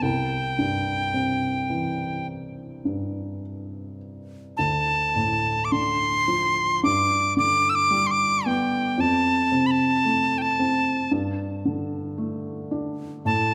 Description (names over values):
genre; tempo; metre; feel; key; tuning
celtic folk, Celtic slow air; 51-57 BPM; 4/4; rubato; unclear; A4 = 441 Hz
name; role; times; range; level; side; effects
bright reedy mid whistle; melody; 0.0-13.5 s; G5 to E6; -24 LUFS; equal; none
felt-muted upright piano; accompaniment; 0.0-13.5 s; C2 to D4; -28 LUFS; equal; none
room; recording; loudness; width
moderate concert hall reverb, RT60 2.4 s; none; -23 LUFS; mono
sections
0.0-13.5 A section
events
none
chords
0.0 C; 4.6 Dm7; 6.8 G; 9.0 F; 11.1 Gsus2